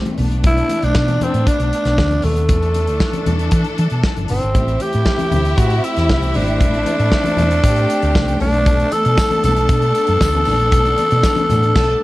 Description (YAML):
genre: disco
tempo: 117 BPM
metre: 4/4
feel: straight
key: A minor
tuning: A4 = 440 Hz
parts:
  - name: growling tenor saxophone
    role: melody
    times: 0.0-12.0 s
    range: A3 to A4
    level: -18 LUFS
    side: equal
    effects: none
  - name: clear symphonic string section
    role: sustained chords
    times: 0.0-12.0 s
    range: E3 to A4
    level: -24 LUFS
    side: left 2 dB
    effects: none
  - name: warm soul drum kit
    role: drums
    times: 0.1-11.9 s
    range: crash cymbal, hi-hat, kick drum, snare drum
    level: -19 LUFS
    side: equal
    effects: none
  - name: congas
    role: percussion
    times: 0.1-11.6 s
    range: none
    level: -26 LUFS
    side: left 3 dB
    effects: none
  - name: hollow-body short-scale fingered electric bass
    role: bass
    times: 0.2-11.9 s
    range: F#1 to E3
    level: -18 LUFS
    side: equal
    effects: none
  - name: clear symphonic violin section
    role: second line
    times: 4.5-11.9 s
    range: E4 to A5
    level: -25 LUFS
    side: equal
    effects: none
  - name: tambourine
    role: percussion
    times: 8.9-11.6 s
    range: none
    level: -39 LUFS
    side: right 9 dB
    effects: none
room: light reverb, small room ambience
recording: dark, warm production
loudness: -13 LUFS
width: side -18 dB against mid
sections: 0.0-4.5 A section; 4.5-12.0 B section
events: band accent 11.8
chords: 0.2 Bm7; 2.5 E7sus4; 4.5 Am7; 8.4 Bm7